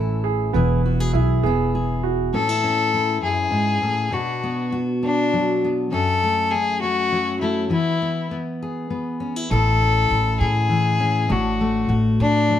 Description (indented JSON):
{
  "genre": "acoustic folk duo or small band",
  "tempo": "67 BPM (dotted quarters)",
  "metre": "6/8",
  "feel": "straight",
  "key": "A major",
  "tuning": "A4 = 441 Hz",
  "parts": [
    { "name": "fingerpicked steel-string acoustic guitar", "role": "accompaniment", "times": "0.0-12.6 s", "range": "F#2 to A4", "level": "-23 LUFS", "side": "left 2 dB", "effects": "none" },
    { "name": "clear upright piano", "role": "arpeggios", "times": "0.0-2.3 s", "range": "B3 to A4", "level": "-24 LUFS", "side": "right 10 dB", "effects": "none" },
    { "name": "upright bass", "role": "bass", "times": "0.0-2.3, 9.5-12.6 s", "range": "E1 to A2", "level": "-21 LUFS", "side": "equal", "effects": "none" },
    { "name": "warm fiddle", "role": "melody", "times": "2.3-12.6 s", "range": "D4 to A4", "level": "-21 LUFS", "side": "left 3 dB", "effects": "none" }
  ],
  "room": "light reverb",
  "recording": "none",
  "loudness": "-18 LUFS",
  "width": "side -10 dB against mid",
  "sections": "0.0-2.3 A section; 2.3-12.6 B section",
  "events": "none",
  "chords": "0.0 A; 0.5 E; 2.3 Amaj7; 4.1 Bm; 5.9 F#m; 7.7 E; 9.5 A; 11.3 D/A"
}